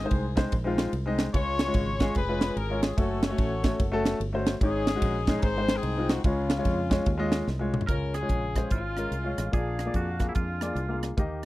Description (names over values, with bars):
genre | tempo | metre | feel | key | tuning
uptempo gospel | 147 BPM | 4/4 | swing 63% on 8ths | Db major | A4 = 440 Hz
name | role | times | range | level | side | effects
warm horn section | melody | 0.0-11.1 s | Ab3 to F5 | -33 LUFS | left 4 dB | none
warm baby grand piano | accompaniment | 0.0-11.4 s | Ab2 to F5 | -30 LUFS | left 1 dB | none
fingered electric bass | bass | 0.0-11.4 s | F1 to F2 | -32 LUFS | equal | none
crisp fusion drum kit | drums | 0.1-11.3 s | hi-hat, kick drum, ride cymbal, rim click, snare drum, toms | -27 LUFS | right 1 dB | none
twangy electric guitar | melody | 7.9-11.0 s | Fb4 to Bb4 | -37 LUFS | right 3 dB | none
room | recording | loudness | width
little or no reverb | dry, close 1970s-style studio recording | -24 LUFS | side -17 dB against mid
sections
0.0-7.9 A section; 7.9-11.4 B section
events
drum fill 7.5-7.9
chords
0.0 Ab; 1.3 Db; 2.2 Db7/F; 3.0 Gbm; 4.6 Absus4; 5.4 Ab; 6.2 Db; 9.5 Bb7